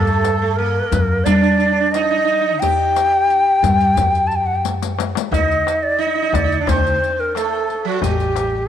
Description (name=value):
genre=Arabic maqam ensemble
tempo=89 BPM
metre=4/4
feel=straight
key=G maqam nahawand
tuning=A4 = 440 Hz
part: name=breathy bright ney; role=melody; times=0.0-8.7 s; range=F#4 to A5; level=-17 LUFS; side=left 1 dB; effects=none
part: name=sitar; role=second line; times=0.0-8.6 s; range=F#3 to G4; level=-23 LUFS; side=right 10 dB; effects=none
part: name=upright bass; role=bass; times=0.0-8.7 s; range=A1 to G3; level=-20 LUFS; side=equal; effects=none
part: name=darbuka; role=percussion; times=0.1-8.5 s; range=none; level=-24 LUFS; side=left 4 dB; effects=none
part: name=riq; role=percussion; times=0.1-8.5 s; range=none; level=-29 LUFS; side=left 14 dB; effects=none
room=moderate plate reverb, RT60 2.8 s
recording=1960s-style stereo with parts hard left and right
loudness=-15 LUFS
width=side -9 dB against mid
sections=0.0-5.3 A section; 5.3-8.7 B section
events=drum fill 4.6-5.3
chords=none